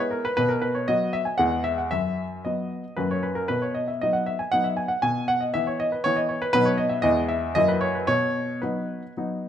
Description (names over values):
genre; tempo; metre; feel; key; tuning
classical-period piano sonatina; 116 BPM; 3/4; uneven beats, rubato; B major; A4 = 437 Hz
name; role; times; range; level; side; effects
warm baby grand piano; solo; 0.0-9.5 s; E2 to G#5; -22 LUFS; equal; none
room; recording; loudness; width
moderate recital hall reverb, RT60 1.6 s; none; -22 LUFS; side -10 dB against mid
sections
0.0-9.5 A section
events
none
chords
0.4 B5; 1.4 E; 1.9 B/F#; 3.0 F#; 3.5 B; 7.1 E; 7.6 F#7; 8.1 B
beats
| 0.38 0.88 1.39 | 1.92 2.44 2.97 | 3.50 4.02 4.53 | 5.04 5.55 6.05 | 6.56 7.06 7.57 | 8.10 8.64 9.17